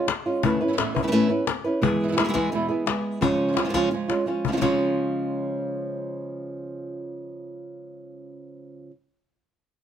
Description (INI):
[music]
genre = flamenco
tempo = 172 BPM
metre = 4/4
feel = straight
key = unclear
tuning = A4 = 439 Hz
[part]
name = flamenco guitar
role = melody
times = 0.0-8.9 s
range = C#3 to B4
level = -24 LUFS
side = equal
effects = none
[part]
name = flamenco guitar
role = stabs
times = 0.0-8.9 s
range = E2 to E#4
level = -31 LUFS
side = right 6 dB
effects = none
[part]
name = cajon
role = percussion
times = 0.1-4.7 s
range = none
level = -27 LUFS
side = left 9 dB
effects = none
[sound]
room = light reverb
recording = close, detailed microphones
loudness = -22 LUFS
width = side -9 dB against mid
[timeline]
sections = 0.0-4.6 A section; 4.6-7.4 B section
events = drum fill 4.1-4.6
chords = 0.4 Aadd9; 1.8 E; 3.2 C#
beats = 0.08 | 0.43 0.78 1.13 1.48 | 1.82 2.17 2.52 2.87 | 3.22 3.57 3.92 4.27 | 4.62 4.96 5.31 5.66 | 6.01 6.36 6.71 7.06